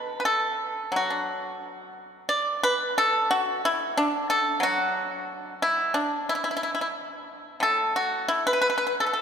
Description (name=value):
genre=chinese traditional, Chinese solo plucked strings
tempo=89 BPM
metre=4/4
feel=rubato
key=unclear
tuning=A4 = 441 Hz
part: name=pipa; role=solo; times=0.0-9.2 s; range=A2 to D5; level=-23 LUFS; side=equal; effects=none
room=wet church reverb, RT60 3.9 s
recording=recorded in a church or concert hall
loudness=-23 LUFS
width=side -7 dB against mid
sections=0.0-9.2 A section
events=none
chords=none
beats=0.26 0.94 1.61 | 2.29 2.96 3.63 4.29 | 4.96 5.62 6.27 6.94 | 7.62 8.31 9.02